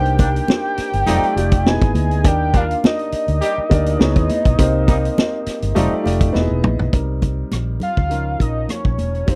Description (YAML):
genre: lush 1970s-style soul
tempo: 102 BPM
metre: 4/4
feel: swing 54% on 16ths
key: unclear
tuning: A4 = 442 Hz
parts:
  - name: fat analog lead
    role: melody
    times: 0.0-9.4 s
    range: C5 to G#5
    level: -25 LUFS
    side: equal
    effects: none
  - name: warm baby grand piano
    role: accompaniment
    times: 0.0-9.4 s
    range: F3 to D#5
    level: -25 LUFS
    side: equal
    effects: none
  - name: vintage muted fingered electric bass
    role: bass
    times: 0.0-9.4 s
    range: E1 to Eb2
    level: -22 LUFS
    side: equal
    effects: none
  - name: vintage drum kit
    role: drums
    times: 0.1-9.4 s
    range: hi-hat, kick drum, rim click, snare drum, toms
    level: -20 LUFS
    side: equal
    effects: none
  - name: brilliant trombone section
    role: stabs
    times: 0.2-5.9 s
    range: G3 to G4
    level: -26 LUFS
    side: equal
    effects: slapback echo
  - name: congas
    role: percussion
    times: 0.2-9.4 s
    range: none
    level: -29 LUFS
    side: equal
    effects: none
room: little or no reverb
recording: dry, close 1970s-style studio recording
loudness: -18 LUFS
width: mono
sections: 0.0-6.9 A section; 6.9-9.4 B section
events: drum fill 6.3-6.9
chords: 0.0 Cm9; 1.1 F13; 1.7 Emaj7; 2.2 Ebmaj7; 4.0 Dbm9; 4.6 Cm7; 5.8 F13; 6.3 Emaj7; 6.9 Cm7; 8.1 Db69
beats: 0.48 1.07 1.66 | 2.24 2.83 3.42 4.00 | 4.59 5.17 5.76 6.35 | 6.93 7.52 8.11 8.70 | 9.28